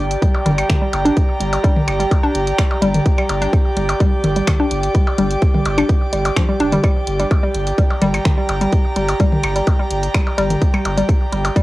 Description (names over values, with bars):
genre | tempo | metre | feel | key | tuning
minimal techno | 127 BPM | 4/4 | straight | G minor | A4 = 438 Hz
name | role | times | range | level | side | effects
round analog bass | bass | 0.0-11.5 s | F1 to G1 | -22 LUFS | equal | sidechain pumping
airy breathy pad | texture | 0.0-11.6 s | G4 to D6 | -22 LUFS | right 1 dB | chorus, sidechain pumping, cassette tape
house drum kit | drums | 0.1-11.6 s | finger snaps, hi-hat | -27 LUFS | equal | overdrive, cassette tape
hollow square pluck | riff | 0.2-11.6 s | F3 to D4 | -21 LUFS | left 1 dB | chorus, sidechain pumping, cassette tape, analog delay
electronic kick drum | drums | 0.2-11.6 s | none | -16 LUFS | equal | overdrive, cassette tape
electronic percussion blips and toms | percussion | 0.3-11.5 s | none | -22 LUFS | equal | overdrive, cassette tape
room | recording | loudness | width
light reverb | home recording on cassette | -14 LUFS | side -18 dB against mid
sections
0.0-11.6 A section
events
none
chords
0.0 Gm